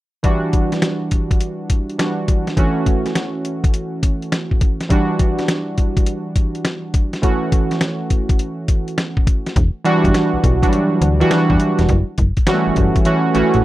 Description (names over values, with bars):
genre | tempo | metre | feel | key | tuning
R&B, new jack swing | 103 BPM | 4/4 | swing 66% on 16ths | E dorian | A4 = 440 Hz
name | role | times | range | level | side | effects
warm analog keys | accompaniment | 0.2-13.6 s | E3 to F#4 | -18 LUFS | right 1 dB | chorus
boom bap sampler-style drum kit | drums | 0.2-13.6 s | hi-hat, kick drum, snare drum | -17 LUFS | equal | none
slap-like FM bass | bass | 9.6-13.6 s | E1 to E2 | -17 LUFS | equal | none
room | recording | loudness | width
little or no reverb | dry, close 1970s-style studio recording | -15 LUFS | side -16 dB against mid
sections
0.2-9.6 A section; 9.6-13.6 B section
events
none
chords
0.2 Em9; 2.6 F#m7; 4.9 Em9; 7.2 F#m7; 9.6 Em9; 11.9 F#m7